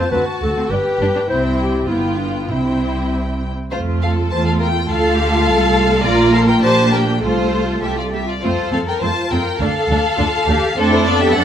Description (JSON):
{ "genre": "quick classical-period movement for symphony orchestra", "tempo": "102 BPM", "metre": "2/4", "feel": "straight", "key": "C major, F major from 3.7 s", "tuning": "A4 = 438 Hz", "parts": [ { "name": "rich symphonic violin section", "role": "melody", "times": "0.0-11.4 s", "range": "A4 to A5", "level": "-22 LUFS", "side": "left 4 dB", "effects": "none" }, { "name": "dark clarinet", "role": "second line", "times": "0.0-3.4 s", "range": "C4 to C5", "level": "-20 LUFS", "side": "left 1 dB", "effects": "none" }, { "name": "warm studio violin section", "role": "second line", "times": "0.0-11.4 s", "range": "C4 to C5", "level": "-22 LUFS", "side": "left 2 dB", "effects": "none" }, { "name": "rich studio viola section", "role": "accompaniment", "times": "0.0-11.4 s", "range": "G3 to F4", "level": "-20 LUFS", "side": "right 1 dB", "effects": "none" }, { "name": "rich studio cello section", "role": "bass", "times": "0.0-11.4 s", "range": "D2 to Bb4", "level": "-23 LUFS", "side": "right 1 dB", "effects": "none" }, { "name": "rich studio double bass section", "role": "bass", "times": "0.1-11.4 s", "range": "G1 to F#2", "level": "-21 LUFS", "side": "right 2 dB", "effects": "none" } ], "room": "moderate recital hall reverb, RT60 1.5 s", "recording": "close, detailed microphones", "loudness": "-14 LUFS", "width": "side -9 dB against mid", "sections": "0.0-3.7 A section; 3.7-11.4 B section", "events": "none", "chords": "0.1 D7; 0.7 G; 1.3 C; 1.9 G7; 2.5 C; 3.7 F; 4.9 Dm; 6.0 Bb; 6.6 Gm/Bb; 7.2 F/C; 7.8 C5; 8.4 F; 9.6 Dm; 10.8 Dm/F" }